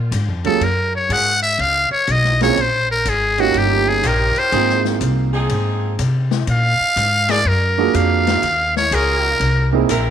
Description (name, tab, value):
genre	jazz, big band swing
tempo	123 BPM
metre	4/4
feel	swing 66% on 8ths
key	Eb minor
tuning	A4 = 440 Hz
part	upright bass	bass	0.0-10.1 s	G1 to C3	-20 LUFS	left 1 dB	none
part	swinging big-band drum kit	drums	0.1-10.0 s	hi-hat, ride cymbal, snare drum	-28 LUFS	left 11 dB	none
part	trumpet with metal mute	melody	0.5-9.7 s	Gb4 to Gb5	-17 LUFS	left 1 dB	none
part	warm grand piano	accompaniment	0.5-9.9 s	Gb3 to Ab4	-20 LUFS	right 15 dB	none
part	edgy saxophone section	sustained chords	1.1-10.1 s	F3 to Bb4	-25 LUFS	left 1 dB	none
room	light reverb, small room ambience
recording	1960s-style stereo with parts hard left and right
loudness	-14 LUFS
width	side -9 dB against mid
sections	0.0-10.1 A section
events	muted trumpet solo 0.0-10.1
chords	0.0 Db6; 0.6 Gbmaj9; 2.6 Bbm7; 3.5 Eb9; 4.5 Ab6; 6.5 Bb7b13; 8.4 Ebm11; 9.4 C7alt